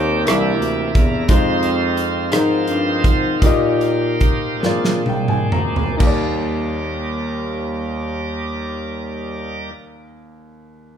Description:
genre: slow gospel.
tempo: 40-59 BPM (dotted quarters).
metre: 6/8.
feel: straight.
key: Eb major.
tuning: A4 = 439 Hz.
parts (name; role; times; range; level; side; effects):
clear grand piano; accompaniment; 0.0-11.0 s; Eb2 to Bb5; -22 LUFS; left 3 dB; none.
bright tonewheel organ; sustained chords; 0.0-9.7 s; Eb3 to D5; -24 LUFS; right 2 dB; slow rotary speaker, overdrive.
warm bass clarinet; bass; 0.0-9.7 s; C2 to Bb2; -23 LUFS; equal; none.
modern studio drum kit; drums; 0.3-6.2 s; crash cymbal, hi-hat, kick drum, rim click, snare drum, toms; -18 LUFS; right 1 dB; none.
room: light reverb.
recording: band playing live in one room.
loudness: -16 LUFS.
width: side -8 dB against mid.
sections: 0.0-6.0 A section; 6.0-11.0 B section.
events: tonewheel organ solo 0.0-6.0; slowing down 1.3-6.0; drum fill 4.6-6.0; grand piano fill 4.6-6.0.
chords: 0.3 C7; 1.3 Fm7; 3.4 Eb/Bb; 4.6 Bb7; 6.0 Ebmaj7.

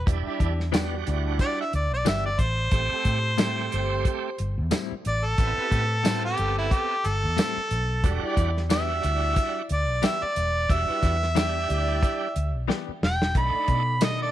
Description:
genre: straight-eighth soul blues.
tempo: 90 BPM.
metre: 4/4.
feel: swing 56% on 16ths.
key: E minor.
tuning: A4 = 439 Hz.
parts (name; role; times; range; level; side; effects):
bright harmonica; melody; 0.0-14.3 s; E4 to B5; -27 LUFS; equal; overdrive, slapback echo.
vintage muted fingered electric bass; bass; 0.0-14.3 s; E1 to B2; -27 LUFS; equal; none.
overdriven tonewheel organ; accompaniment; 0.1-14.3 s; G3 to A4; -33 LUFS; right 13 dB; slow rotary speaker.
mellow horn section; sustained chords; 0.1-14.0 s; C4 to D5; -34 LUFS; left 1 dB; none.
warm soul drum kit; drums; 0.1-14.2 s; hi-hat, kick drum, snare drum, tambourine; -25 LUFS; equal; none.
direct-recorded clean electric guitar; stabs; 0.7-14.2 s; A2 to G4; -32 LUFS; left 14 dB; tremolo.
room: studio reverb.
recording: 1960s-style stereo with parts hard left and right.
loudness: -22 LUFS.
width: side -13 dB against mid.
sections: 0.0-14.3 A section.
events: harmonica solo 0.0-14.3; drum fill 12.7-13.4.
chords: 0.0 Em7; 2.7 Am7; 8.0 Em7; 13.4 B7#9.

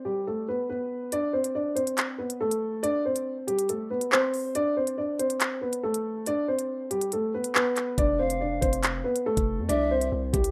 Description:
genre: hip hop, drill.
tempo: 140 BPM.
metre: 4/4.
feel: half-time.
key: unclear.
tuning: A4 = 440 Hz.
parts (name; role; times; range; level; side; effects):
dark concert grand piano; melody; 0.0-10.5 s; G3 to D5; -29 LUFS; equal; low-pass filter.
drill drum kit; drums; 1.1-10.5 s; handclaps, hi-hat, kick drum; -30 LUFS; equal; none.
long sustained 808-style bass; bass; 8.0-10.5 s; F1 to F2; -34 LUFS; equal; none.
mellow hollow polished pan flute; second line; 8.2-10.1 s; E5 to F5; -37 LUFS; equal; tape echo.
room: moderate small room reverb, RT60 0.5 s.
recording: rough home demo mix.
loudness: -27 LUFS.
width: mono.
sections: 0.0-1.1 A section; 1.1-10.5 B section.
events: filter sweep on grand piano 0.0-1.1; kick muted 1.1-8.0.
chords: 0.0 G; 1.1 Amadd11; 2.8 C5; 4.5 D5; 6.3 Gadd11; 8.0 F; 9.7 C.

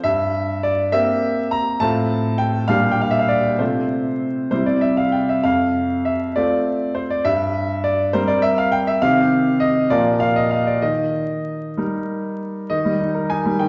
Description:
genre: classical-period piano sonatina.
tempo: 63-69 BPM (dotted quarters).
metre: 6/8.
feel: rubato.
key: Eb major from 9.0 s.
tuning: A4 = 440 Hz.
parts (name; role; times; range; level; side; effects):
bright grand piano; solo; 0.0-13.7 s; F2 to Bb5; -20 LUFS; equal; none.
room: wet recital hall reverb, RT60 1.6 s.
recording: heard from further back in the room, vinyl crackle, nothing above 7.8 kHz.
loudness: -20 LUFS.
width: mono.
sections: 0.0-12.7 A section.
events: none.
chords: 0.0 C7/G; 1.8 F/A; 2.7 Gm/Bb; 3.6 F/C; 4.5 C; 5.5 F; 7.3 C7/G; 9.0 Cm; 9.9 Bb5; 10.8 Eb.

